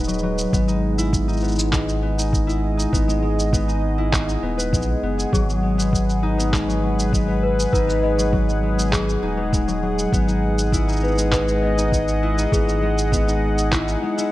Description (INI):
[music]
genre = folktronica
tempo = 100 BPM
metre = 4/4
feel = straight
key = unclear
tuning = A4 = 441 Hz
[part]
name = warm analog pad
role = sustained chords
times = 0.0-14.3 s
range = G#3 to F#5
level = -26 LUFS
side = right 1 dB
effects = chorus
[part]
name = concert harp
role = arpeggios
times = 0.0-14.3 s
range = F#3 to B4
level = -24 LUFS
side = left 2 dB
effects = digital delay
[part]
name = warm sub bass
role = bass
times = 0.0-14.0 s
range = D#1 to A#1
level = -22 LUFS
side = equal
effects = none
[part]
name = electronic shaker and handclaps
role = drums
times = 0.0-14.3 s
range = none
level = -28 LUFS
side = equal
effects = none
[part]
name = electronic kick drum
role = drums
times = 0.5-13.8 s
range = none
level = -22 LUFS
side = equal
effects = none
[part]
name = celesta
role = second line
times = 5.3-14.3 s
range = G#4 to D#5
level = -27 LUFS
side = left 1 dB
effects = digital delay
[sound]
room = digital ambience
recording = none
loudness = -18 LUFS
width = side -16 dB against mid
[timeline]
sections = 0.0-14.3 A section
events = none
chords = 0.0 G#m7; 0.5 Emaj7/G#; 5.3 G#m7; 10.1 Emaj7/G#